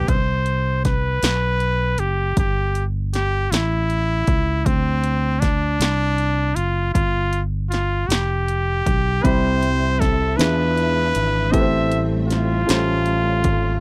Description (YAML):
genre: slow gospel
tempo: 52 BPM (dotted quarters)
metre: 6/8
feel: straight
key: unclear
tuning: A4 = 439 Hz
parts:
  - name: brilliant trumpet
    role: melody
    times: 0.0-13.8 s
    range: C4 to E5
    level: -25 LUFS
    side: equal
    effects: none
  - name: warm grand piano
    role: accompaniment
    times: 0.0-0.1, 9.2-13.8 s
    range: A2 to B5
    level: -26 LUFS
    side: equal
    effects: none
  - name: fingered electric bass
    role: bass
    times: 0.0-13.8 s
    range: F1 to E2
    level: -24 LUFS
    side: equal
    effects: none
  - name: punchy analog drum machine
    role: drums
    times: 0.1-13.6 s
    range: hi-hat, kick drum, snare drum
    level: -24 LUFS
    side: equal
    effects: none
  - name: warm studio string section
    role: sustained chords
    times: 9.2-13.8 s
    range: E3 to E5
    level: -33 LUFS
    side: equal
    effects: none
room: little or no reverb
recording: dry, close 1970s-style studio recording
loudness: -20 LUFS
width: mono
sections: 0.1-13.8 A section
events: none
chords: 0.1 Gadd11 (rootless); 2.4 N.C.; 3.5 A; 4.7 D7; 7.0 G7; 9.2 Cmaj7; 10.4 E7b9; 11.5 Am7; 12.7 A7alt